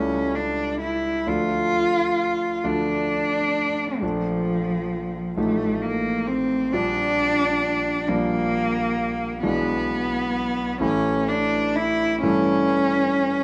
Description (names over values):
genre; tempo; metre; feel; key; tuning
classical, romantic duo for cello and grand piano; 44 BPM (dotted quarters); 6/8; rubato; D minor; A4 = 439 Hz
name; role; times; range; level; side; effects
warm cello; melody; 0.0-13.4 s; F3 to F4; -24 LUFS; equal; none
bright concert grand piano; accompaniment; 0.0-13.4 s; A1 to E4; -28 LUFS; equal; none
room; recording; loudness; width
light reverb; close, detailed microphones; -23 LUFS; mono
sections
0.0-13.4 A section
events
none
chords
0.0 A7/C#; 1.3 Dm; 4.0 Bbmaj7; 5.4 F7/A; 6.7 Bb6; 9.4 E7/B; 10.8 A5; 12.2 A7/G